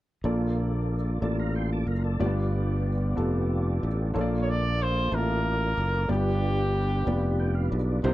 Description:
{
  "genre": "slow gospel",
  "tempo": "62 BPM (dotted quarters)",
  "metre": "6/8",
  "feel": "straight",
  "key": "Bb major",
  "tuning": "A4 = 440 Hz",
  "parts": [
    { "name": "warm grand piano", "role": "accompaniment", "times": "0.2-8.1 s", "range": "G2 to A5", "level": "-30 LUFS", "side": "equal", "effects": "none" },
    { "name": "tonewheel organ", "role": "sustained chords", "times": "0.2-8.1 s", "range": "G3 to D6", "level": "-35 LUFS", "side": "right 1 dB", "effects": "slow rotary speaker, overdrive, chorus vibrato" },
    { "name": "modern bright fingered electric bass", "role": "bass", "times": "0.2-8.1 s", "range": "F1 to C2", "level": "-26 LUFS", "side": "equal", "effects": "none" },
    { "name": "clear trumpet", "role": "melody", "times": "4.4-7.7 s", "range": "G4 to D5", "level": "-29 LUFS", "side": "equal", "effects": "none" }
  ],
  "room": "light reverb",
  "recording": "dark, warm production",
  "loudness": "-24 LUFS",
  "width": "side -16 dB against mid",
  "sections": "0.2-4.1 A section; 4.1-8.1 B section",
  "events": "tonewheel organ fill 7.1-8.0",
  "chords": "0.2 Bbmaj7; 2.2 G7; 4.1 Bbmaj7; 6.1 G7",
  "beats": "| 0.24 1.22 | 2.19 3.17 | 4.14 5.12 | 6.09 7.06 | 8.04"
}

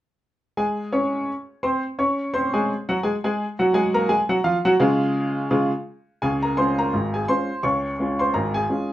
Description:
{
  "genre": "ragtime piano",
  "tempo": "85 BPM",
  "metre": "2/4",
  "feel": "swing 58% on 16ths",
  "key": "Db major",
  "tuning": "A4 = 442 Hz",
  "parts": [
    { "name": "clear upright piano", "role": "solo", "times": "0.6-8.9 s", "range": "Ab1 to Db6", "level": "-20 LUFS", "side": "equal", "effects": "none" }
  ],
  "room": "wet small room reverb, RT60 0.5 s",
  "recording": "none",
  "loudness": "-20 LUFS",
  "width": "side -14 dB against mid",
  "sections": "0.6-6.2 A section; 6.2-8.9 B section",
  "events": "none",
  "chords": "0.6 Db",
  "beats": "| 0.57 1.27 | 1.98 2.69 | 3.39 4.09 | 4.80 5.51 | 6.22 6.92 | 7.63 8.33"
}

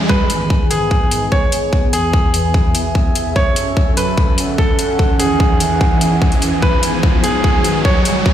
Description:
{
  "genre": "heavy wobble dubstep",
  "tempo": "147 BPM",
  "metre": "4/4",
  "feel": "half-time",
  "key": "G# phrygian",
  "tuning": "A4 = 439 Hz",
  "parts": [
    { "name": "lush unison pad", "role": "sustained chords", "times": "0.0-8.3 s", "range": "E2 to A4", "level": "-22 LUFS", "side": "equal", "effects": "chorus, phaser, sidechain pumping" },
    { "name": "riser", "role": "sound effects", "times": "0.0-8.3 s", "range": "none", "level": "-22 LUFS", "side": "right 2 dB", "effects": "none" },
    { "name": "warbly tape-like pad", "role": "texture", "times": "0.0-8.3 s", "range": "E3 to A5", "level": "-22 LUFS", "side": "right 1 dB", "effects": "chorus, built-in reverb, sidechain pumping" },
    { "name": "warm concert grand piano", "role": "melody", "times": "0.1-8.3 s", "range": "G#4 to C#5", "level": "-19 LUFS", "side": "equal", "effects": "ping-pong delay" },
    { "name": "electronic kick drum", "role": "drums", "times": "0.1-8.3 s", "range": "none", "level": "-16 LUFS", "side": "equal", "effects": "overdrive" },
    { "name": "electronic hi-hat", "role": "drums", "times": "0.3-8.1 s", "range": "none", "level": "-22 LUFS", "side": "left 2 dB", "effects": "overdrive, low-pass filter on cymbals, low-pass filter on hats, low-pass filter on room" }
  ],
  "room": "light reverb",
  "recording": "played on a big sound system in a bare room, stone room reverb",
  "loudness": "-12 LUFS",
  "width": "side -10 dB against mid",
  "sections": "0.1-8.3 A section",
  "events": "build-up 0.1-8.3; riser 0.1-8.3; drum fill 6.6-8.3",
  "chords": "0.1 G#m; 1.7 E; 3.4 F#m; 5.0 C#m/E; 6.6 G#m",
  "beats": "| 0.09 0.50 0.91 1.32 | 1.73 2.13 2.54 2.95 | 3.36 3.77 4.18 4.58 | 4.99 5.40 5.81 6.22 | 6.62 7.03 7.44 7.85 | 8.26"
}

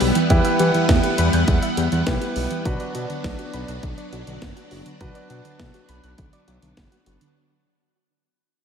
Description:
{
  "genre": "synth-pop",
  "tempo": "102 BPM",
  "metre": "4/4",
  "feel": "straight",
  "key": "unclear",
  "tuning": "A4 = 442 Hz",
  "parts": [
    { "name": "warm concert grand piano", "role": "accompaniment", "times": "0.0-7.3 s", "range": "D4 to B4", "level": "-26 LUFS", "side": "right 2 dB", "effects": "slapback echo" },
    { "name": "string machine, violins", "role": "sustained chords", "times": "0.0-7.3 s", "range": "F#3 to F#5", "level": "-25 LUFS", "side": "equal", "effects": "ensemble chorus" },
    { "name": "soft round pluck", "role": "arpeggios", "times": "0.0-7.3 s", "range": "D3 to G6", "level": "-28 LUFS", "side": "equal", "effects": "chorus, ping-pong delay, slapback echo" },
    { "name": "smooth synth bass", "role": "bass", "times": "0.0-7.2 s", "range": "F#1 to E3", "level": "-23 LUFS", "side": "equal", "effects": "none" },
    { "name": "house drum kit", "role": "drums", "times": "0.0-7.3 s", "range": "hi-hat, kick drum, snare drum", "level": "-23 LUFS", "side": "equal", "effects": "none" }
  ],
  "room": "moderate lush hall reverb, RT60 2.6 s",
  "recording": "big arena sound",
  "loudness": "-18 LUFS",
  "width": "side -7 dB against mid",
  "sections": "0.0-7.4 A section",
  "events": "fade-out 0.0-7.4",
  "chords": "0.0 Em; 2.7 Bm",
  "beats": "| 0.30 0.89 1.48 2.07 | 2.65 3.24 3.83 4.42 | 5.01 5.59 6.18 6.77"
}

